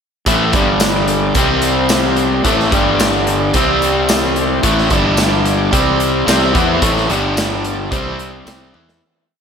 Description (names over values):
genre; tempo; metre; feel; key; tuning
classic rock; 110 BPM; 4/4; straight; A minor; A4 = 441 Hz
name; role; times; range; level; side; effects
crunchy overdriven guitar; riff; 0.3-9.0 s; G2 to E4; -16 LUFS; left 9 dB; none
overdriven semi-hollow guitar; riff; 0.3-9.0 s; G2 to E4; -18 LUFS; right 9 dB; none
fuzz fingered electric bass; bass; 0.3-9.0 s; G1 to E2; -22 LUFS; right 1 dB; overdrive
big rock drum kit; drums; 0.3-9.0 s; hi-hat, kick drum, snare drum, tambourine, toms; -18 LUFS; equal; none
bright tonewheel organ; sustained chords; 0.5-9.0 s; A3 to D5; -26 LUFS; equal; none
room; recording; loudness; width
moderate lush hall reverb, RT60 2.7 s; big arena sound; -12 LUFS; side -6 dB against mid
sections
0.3-9.0 riff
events
fade-out 6.8-9.0; drum fill 8.7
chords
0.3 A5; 0.5 G5; 1.4 C5; 2.4 A5; 2.7 G5; 3.5 C5; 4.6 A5; 4.9 G5; 5.7 C5; 6.3 Am; 7.1 G5; 7.9 C5; 8.5 Am